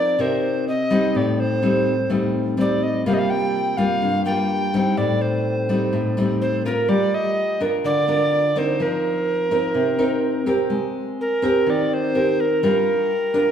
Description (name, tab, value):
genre	bossa nova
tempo	125 BPM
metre	4/4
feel	straight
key	unclear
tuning	A4 = 441 Hz
part	alto recorder	melody	0.0-13.5 s	Bb4 to G5	-22 LUFS	equal	none
part	nylon-string guitar	accompaniment	0.0-13.5 s	G2 to Bb4	-20 LUFS	equal	none
room	wet large studio reverb, RT60 1.4 s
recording	band playing live in one room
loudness	-18 LUFS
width	side -8 dB against mid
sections	0.0-10.7 A section; 10.7-13.5 B section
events	none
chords	0.0 F7sus4; 1.1 Am7b5; 3.1 C7sus4; 5.0 Am7b5; 6.9 Gm7; 8.8 F7sus4; 10.7 Abmaj9; 12.6 Gm7